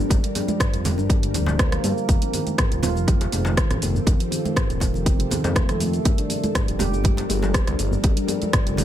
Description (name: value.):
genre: afro house.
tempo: 121 BPM.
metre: 4/4.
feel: swing 53% on 16ths.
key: G minor.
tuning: A4 = 438 Hz.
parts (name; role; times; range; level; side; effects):
ethereal airy pad; sustained chords; 0.0-8.8 s; F3 to Bb4; -31 LUFS; left 2 dB; ensemble chorus, built-in reverb, sidechain pumping.
smooth synth bass; bass; 0.0-8.8 s; D1 to G2; -25 LUFS; equal; tube saturation, sidechain pumping.
house drum kit; drums; 0.0-8.8 s; hi-hat, rim click, shaker, toms; -27 LUFS; right 1 dB; overdrive.
electronic kick drum; drums; 0.1-8.6 s; none; -21 LUFS; equal; overdrive.
congas; percussion; 0.1-8.8 s; none; -30 LUFS; right 3 dB; none.
djembe; percussion; 0.1-8.8 s; none; -31 LUFS; left 2 dB; none.
handpan; arpeggios; 0.2-8.8 s; C3 to G4; -27 LUFS; right 1 dB; sidechain pumping, ping-pong delay.
room: little or no reverb.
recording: none.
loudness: -19 LUFS.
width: side -11 dB against mid.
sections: 0.0-8.8 A section.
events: none.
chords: 0.0 Gm; 2.1 F; 6.1 Gm.